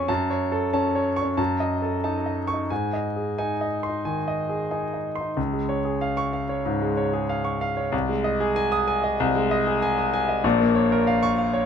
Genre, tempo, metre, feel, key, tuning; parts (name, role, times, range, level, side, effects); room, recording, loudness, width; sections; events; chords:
classical, virtuoso piano study; 88-97 BPM; 4/4; rubato; Db major; A4 = 441 Hz
warm concert grand piano; solo; 0.0-11.7 s; Bb1 to Eb6; -22 LUFS; equal
little or no reverb; close, detailed microphones; -22 LUFS; side -7 dB against mid
0.0-5.4 A section; 5.4-11.7 B section
0.1 Gbm; 1.4 Ebm7b5/Gb; 2.7 Ab; 5.4 Db; 7.9 Ab/C; 10.4 Bbm